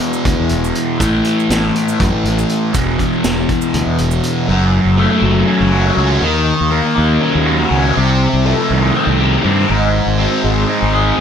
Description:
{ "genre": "psychedelic rock", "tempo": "242 BPM (eighths)", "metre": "7/8", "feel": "straight", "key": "unclear", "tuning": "A4 = 440 Hz", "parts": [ { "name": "fuzz guitar", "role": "riff", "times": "0.0-11.2 s", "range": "E2 to G#4", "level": "-14 LUFS", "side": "left 1 dB", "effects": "distortion, phaser" }, { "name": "vintage drum kit", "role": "drums", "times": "0.0-4.4 s", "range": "hi-hat, kick drum, snare drum", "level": "-20 LUFS", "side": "equal", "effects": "none" }, { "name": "maracas", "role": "percussion", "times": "0.1-4.2 s", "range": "none", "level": "-31 LUFS", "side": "right 8 dB", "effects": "none" }, { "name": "fuzz fingered electric bass", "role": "bass", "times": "0.3-11.2 s", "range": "E1 to A2", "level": "-17 LUFS", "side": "equal", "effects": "overdrive" } ], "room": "light reverb", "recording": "echo-heavy mix", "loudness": "-12 LUFS", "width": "side -8 dB against mid", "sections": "0.0-4.5 A section; 4.5-11.2 B section", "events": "none", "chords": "0.0 E5; 1.0 A5; 2.8 E5; 4.5 F#m; 6.2 D#m7; 8.0 Cm6; 9.7 G#", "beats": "0.02 0.27 0.52 0.77 | 1.01 1.26 1.51 1.76 2.01 2.26 2.51 | 2.75 3.00 3.25 3.50 3.75 4.00 4.25 | 4.49 4.74 4.99 5.24 5.49 5.74 5.98 | 6.23 6.48 6.73 6.98 7.22 7.47 7.72 | 7.97 8.22 8.46 8.71 8.96 9.21 9.46 | 9.71 9.95 10.20 10.45 10.70 10.95 11.19" }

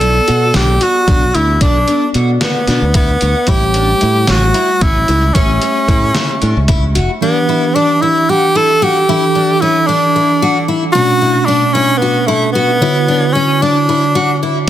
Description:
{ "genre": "progressive instrumental, band music in an uneven meter", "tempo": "225 BPM (eighths)", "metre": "7/8", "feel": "straight", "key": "unclear", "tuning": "A4 = 436 Hz", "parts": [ { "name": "clear tenor saxophone", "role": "melody", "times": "0.0-14.4 s", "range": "A3 to A4", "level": "-13 LUFS", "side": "equal", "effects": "tape echo" }, { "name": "mellow tine electric piano", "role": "accompaniment", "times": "0.0-14.7 s", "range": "B2 to E5", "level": "-18 LUFS", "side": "right 1 dB", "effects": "medium stereo tremolo" }, { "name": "picked twelve-string acoustic guitar", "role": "arpeggios", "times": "0.0-14.6 s", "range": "C#4 to F#4", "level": "-19 LUFS", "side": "left 3 dB", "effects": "tape echo" }, { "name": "modern bright fingered electric bass", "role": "bass", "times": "0.0-7.1 s", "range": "E#1 to B2", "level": "-14 LUFS", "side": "equal", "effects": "none" }, { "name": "trip hop sampler-style drum kit", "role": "drums", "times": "0.0-7.1, 14.7 s", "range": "hi-hat, kick drum, snare drum", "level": "-15 LUFS", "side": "equal", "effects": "none" } ], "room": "moderate studio reverb, RT60 0.6 s", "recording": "dense, heavily limited modern master", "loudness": "-10 LUFS", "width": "side -12 dB against mid", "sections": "0.0-7.2 A section; 7.2-14.7 B section", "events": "none", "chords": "0.0 Bm7; 3.5 A7; 7.2 Em7; 11.0 Bm9; 12.8 Dmaj9", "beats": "0.02 0.28 0.55 0.82 1.08 1.35 | 1.62 1.89 2.15 2.42 2.69 2.95 3.22 | 3.48 3.75 4.02 4.29 4.55 4.82 5.08 | 5.35 5.62 5.88 6.15 6.42 6.68 6.95 | 7.22 7.49 7.75 8.02 8.29 8.55 8.82 | 9.09 9.35 9.62 9.88 10.15 10.42 10.69 | 10.95 11.22 11.48 11.75 12.02 12.28 12.55 | 12.82 13.08 13.35 13.62 13.88 14.15 14.42 | 14.68" }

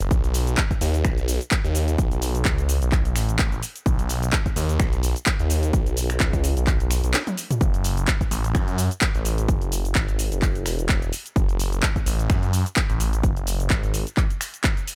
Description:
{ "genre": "bass house", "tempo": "128 BPM", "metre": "4/4", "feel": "swing 56% on 16ths", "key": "F# dorian", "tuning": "A4 = 439 Hz", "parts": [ { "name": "phased detuned saw bass", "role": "bass", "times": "0.0-14.0 s", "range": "E1 to F#2", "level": "-25 LUFS", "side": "equal", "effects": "phaser, tube saturation, sidechain pumping" }, { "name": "house drum kit", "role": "drums", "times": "0.0-14.9 s", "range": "finger snaps, handclaps, hi-hat, shaker, snare drum, toms", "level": "-29 LUFS", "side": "equal", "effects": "none" }, { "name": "electronic kick drum", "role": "drums", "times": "0.1-14.7 s", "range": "none", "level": "-25 LUFS", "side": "equal", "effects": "none" } ], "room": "little or no reverb", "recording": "none", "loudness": "-23 LUFS", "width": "mono", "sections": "0.0-14.9 A section", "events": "drum fill 7.1-7.6", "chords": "none", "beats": "| 0.11 0.58 1.05 1.52 | 1.99 2.45 2.92 3.39 | 3.86 4.33 4.80 5.27 | 5.74 6.20 6.67 7.14 | 7.61 8.08 8.55 9.02 | 9.48 9.95 10.42 10.89 | 11.36 11.83 12.30 12.77 | 13.23 13.70 14.17 14.64" }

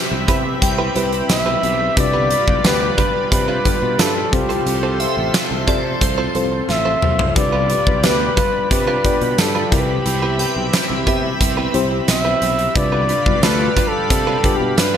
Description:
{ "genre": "1980s-style pop", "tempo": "89 BPM", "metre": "4/4", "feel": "straight", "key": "C major", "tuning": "A4 = 440 Hz", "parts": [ { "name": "shimmering bell with halo", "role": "second line", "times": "0.0-11.9 s", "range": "C5 to G5", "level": "-27 LUFS", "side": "equal", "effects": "ensemble chorus, ping-pong delay" }, { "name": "FM electric piano with auto-pan", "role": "accompaniment", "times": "0.0-15.0 s", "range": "C3 to D5", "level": "-25 LUFS", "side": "left 3 dB", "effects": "none" }, { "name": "overdriven semi-hollow guitar", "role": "accompaniment", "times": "0.0-15.0 s", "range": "F2 to C4", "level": "-31 LUFS", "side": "right 3 dB", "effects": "none" }, { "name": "chorused pulse-width pad", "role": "sustained chords", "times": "0.0-15.0 s", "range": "C4 to C6", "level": "-25 LUFS", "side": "left 1 dB", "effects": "none" }, { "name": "direct-recorded clean electric guitar", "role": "riff", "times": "0.1-15.0 s", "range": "G3 to C5", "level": "-27 LUFS", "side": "right 5 dB", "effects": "lush chorus, ping-pong delay" }, { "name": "sustaining fretless electric bass", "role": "bass", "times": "0.1-15.0 s", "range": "A1 to C3", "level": "-24 LUFS", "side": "equal", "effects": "none" }, { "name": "huge arena drum kit", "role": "drums", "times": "0.3-14.9 s", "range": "hi-hat, kick drum, snare drum, tambourine, toms", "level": "-19 LUFS", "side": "equal", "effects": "gated reverb" }, { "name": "breathy flugelhorn", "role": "melody", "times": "1.3-15.0 s", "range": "G4 to E5", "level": "-20 LUFS", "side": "left 1 dB", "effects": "ping-pong delay" }, { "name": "analog synth brass", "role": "stabs", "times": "2.1-14.6 s", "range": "D3 to D5", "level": "-26 LUFS", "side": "left 2 dB", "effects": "chorus" } ], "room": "moderate lush hall reverb, RT60 1.9 s, small room ambience", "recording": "bright 1980s-style digital production", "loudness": "-15 LUFS", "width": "side -9 dB against mid", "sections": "0.0-15.0 A section", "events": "drum fill 6.7-7.4", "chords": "0.0 Cmaj7; 2.0 G7; 4.3 F; 7.4 G7; 9.7 Cmaj7; 12.8 G7", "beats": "0.62 1.29 | 1.97 2.64 3.32 3.99 | 4.67 5.34 6.01 6.69 | 7.36 8.04 8.71 9.38 | 10.06 10.73 11.41 12.08 | 12.76 13.43 14.10 14.78" }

